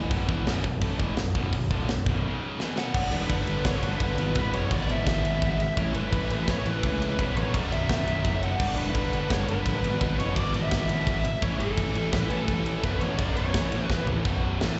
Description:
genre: heavy metal.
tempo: 170 BPM.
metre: 4/4.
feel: straight.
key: B minor.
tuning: A4 = 440 Hz.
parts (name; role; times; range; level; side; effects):
high-gain distorted guitar; riff; 0.0-14.8 s; B1 to A3; -33 LUFS; equal; distortion, slapback echo.
fuzz picked electric bass; bass; 0.0-14.8 s; B0 to C#2; -31 LUFS; equal; overdrive.
tight metal drum kit; drums; 0.1-14.7 s; china cymbal, crash cymbal, hi-hat, kick drum, ride cymbal, snare drum, toms; -33 LUFS; equal; none.
high-gain lead guitar; melody; 2.8-14.0 s; A4 to F#5; -34 LUFS; equal; distortion, slapback echo, digital delay.
room: little or no reverb.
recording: live gig heard through the venue's PA, recital hall reverb, nothing above 8.0 kHz.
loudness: -27 LUFS.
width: mono.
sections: 0.0-3.0 A section; 3.0-14.2 B section.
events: break 2.2-3.0; drum fill 2.6-3.0, 13.9-14.2; half time 3.0-14.2.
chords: 0.0 Bm; 2.2 C#5; 2.6 B5; 3.0 G; 4.2 E; 5.8 A; 7.2 B5; 8.6 G; 9.8 E; 11.4 A5; 12.8 B5; 13.5 A; 14.2 B5.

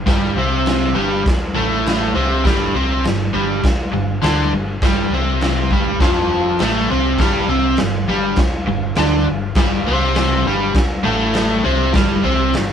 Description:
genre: garage rock duo or trio.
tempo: 101 BPM.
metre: 4/4.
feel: straight.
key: unclear.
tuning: A4 = 444 Hz.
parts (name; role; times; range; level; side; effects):
hollow-body short-scale fingered electric bass; bass; 0.0-12.7 s; F1 to D2; -23 LUFS; equal; none.
overdriven electric guitar; riff; 0.1-12.7 s; F2 to D4; -17 LUFS; equal; none.
raw garage drum kit; drums; 0.1-12.7 s; crash cymbal, kick drum, snare drum; -19 LUFS; equal; none.
room: light reverb.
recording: band playing live in one room.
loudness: -15 LUFS.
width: side -8 dB against mid.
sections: 0.0-12.7 A section.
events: none.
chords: 0.0 G5.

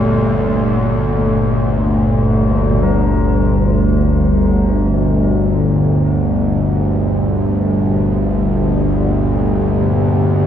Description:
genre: dark ambient drone.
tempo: free time.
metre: none.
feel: none.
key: G minor.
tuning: A4 = 440 Hz.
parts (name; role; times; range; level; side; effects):
sweeping resonant pad; sustained chords; 0.0-10.5 s; Bb2 to G4; -21 LUFS; right 1 dB; wide subtle chorus.
bronze singing bowl; arpeggios; 0.0-9.3 s; G3 to A4; -20 LUFS; left 2 dB; diffuse ambient delay.
bowed-like drone; drone; 0.0-10.5 s; G1 to D2; -14 LUFS; equal; built-in reverb.
room: wet huge ambient reverb, RT60 7.0 s.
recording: none.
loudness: -13 LUFS.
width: side -9 dB against mid.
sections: 0.0-2.8 A section; 2.8-10.5 B section.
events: none.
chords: 0.0 Gmadd9.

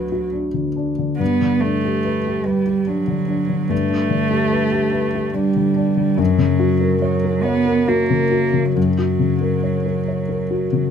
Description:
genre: neoclassical piano and strings.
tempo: 71 BPM.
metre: 3/4.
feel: uneven beats, rubato.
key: unclear.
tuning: A4 = 438 Hz.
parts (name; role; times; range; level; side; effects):
dark cello; second line; 0.0-10.9 s; F#3 to B3; -20 LUFS; right 5 dB; none.
dark grand piano; accompaniment; 0.0-10.9 s; D2 to C#5; -18 LUFS; left 3 dB; none.
room: moderate small room reverb, RT60 0.5 s.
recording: none.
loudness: -16 LUFS.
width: side -8 dB against mid.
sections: 0.0-10.9 A section.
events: none.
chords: 0.0 Bm/D; 1.2 G; 6.2 F#.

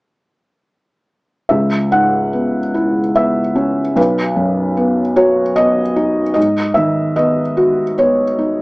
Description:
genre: classical.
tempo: 74 BPM.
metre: 3/4.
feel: rubato.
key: C# minor.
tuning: A4 = 440 Hz.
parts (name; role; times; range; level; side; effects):
felt-muted upright piano; accompaniment; 1.5-8.6 s; B1 to F#5; -13 LUFS; equal; none.
room: wet studio ambience, RT60 0.5 s.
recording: cassette tape, small speaker sound.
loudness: -13 LUFS.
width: side -25 dB against mid.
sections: 1.5-8.6 A section.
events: none.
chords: 1.5 C#m7; 4.0 B; 6.4 G#m7.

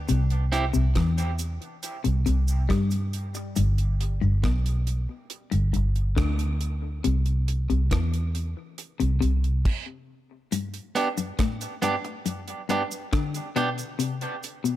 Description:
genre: dub reggae.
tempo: 69 BPM.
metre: 4/4.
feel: straight.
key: G major.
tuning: A4 = 440 Hz.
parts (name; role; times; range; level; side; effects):
vintage muted fingered electric bass; bass; 0.0-9.6 s; G1 to G2; -23 LUFS; equal; none.
clean electric guitar; riff; 0.1-14.8 s; F#2 to G3; -30 LUFS; left 7 dB; spring reverb, dub echo.
deep reggae drum kit; drums; 0.1-14.8 s; crash cymbal, hi-hat, kick drum, rim click; -30 LUFS; right 1 dB; none.
cabasa; percussion; 0.1-3.8, 10.5-14.8 s; none; -39 LUFS; right 4 dB; none.
electric guitar at the edge of break-up; accompaniment; 0.5-0.6, 11.0-13.7 s; B3 to G4; -30 LUFS; right 3 dB; dub echo.
room: studio reverb.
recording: none.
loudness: -23 LUFS.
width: side -14 dB against mid.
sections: 0.0-10.5 A section; 10.5-14.8 B section.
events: part muted 3.6-10.5; stop 9.7-10.5.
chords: 0.1 C; 3.6 G; 7.0 C; 10.5 G; 14.0 N.C..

